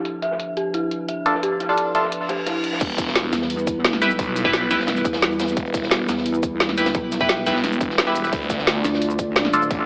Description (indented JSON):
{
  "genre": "dark technical drum and bass",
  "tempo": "174 BPM",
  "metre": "4/4",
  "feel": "straight",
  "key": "E phrygian",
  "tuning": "A4 = 439 Hz",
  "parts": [
    { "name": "dark analog pad", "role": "sustained chords", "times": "0.0-9.9 s", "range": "F3 to D5", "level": "-29 LUFS", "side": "equal", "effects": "chorus, sidechain pumping" },
    { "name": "crunchy breakbeat drum kit", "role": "drums", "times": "0.1-9.8 s", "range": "hi-hat, snare drum", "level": "-34 LUFS", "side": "equal", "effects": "none" },
    { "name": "drum and bass drum kit", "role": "drums", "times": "0.1-9.8 s", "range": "crash cymbal, hi-hat, shaker, snare drum", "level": "-25 LUFS", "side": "equal", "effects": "none" },
    { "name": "dark detuned synth bell", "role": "arpeggios", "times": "0.2-2.6 s", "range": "E4 to E5", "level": "-28 LUFS", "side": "equal", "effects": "chorus, phaser, sidechain pumping, digital delay" },
    { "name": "band-passed chord stab", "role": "stabs", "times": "1.3-9.6 s", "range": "D4 to B4", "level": "-25 LUFS", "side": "equal", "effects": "phaser, subtle chorus, cassette tape, digital delay" },
    { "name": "reverse cymbal", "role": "sound effects", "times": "2.2-2.8 s", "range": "none", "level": "-34 LUFS", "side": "equal", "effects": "none" },
    { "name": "phased detuned saw bass", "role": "bass", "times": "2.8-9.9 s", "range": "E1 to D2", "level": "-28 LUFS", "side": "equal", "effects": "phaser, overdrive" },
    { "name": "electronic kick drum", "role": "drums", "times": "2.8-9.8 s", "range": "none", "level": "-29 LUFS", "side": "equal", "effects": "none" },
    { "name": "pulsing pluck wobble bass", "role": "bass", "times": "3.3-9.7 s", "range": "B1 to E2", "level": "-29 LUFS", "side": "equal", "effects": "chorus" }
  ],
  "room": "moderate lush hall reverb, RT60 1.9 s",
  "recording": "low-pass filter, AM radio sound",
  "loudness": "-21 LUFS",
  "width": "mono",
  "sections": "0.0-2.8 A section; 2.8-9.9 B section",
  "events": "filter sweep 0.0-2.8; reverse cymbal 2.2-2.8; drop 2.8-9.9",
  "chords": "0.0 Dm; 2.8 Em; 8.3 Dm",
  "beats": "| 0.05 0.40 0.74 1.09 | 1.43 1.77 2.12 2.46 | 2.81 3.15 3.50 3.84 | 4.19 4.53 4.88 5.22 | 5.57 5.91 6.26 6.60 | 6.95 7.29 7.64 7.98 | 8.33 8.67 9.02 9.36 | 9.71"
}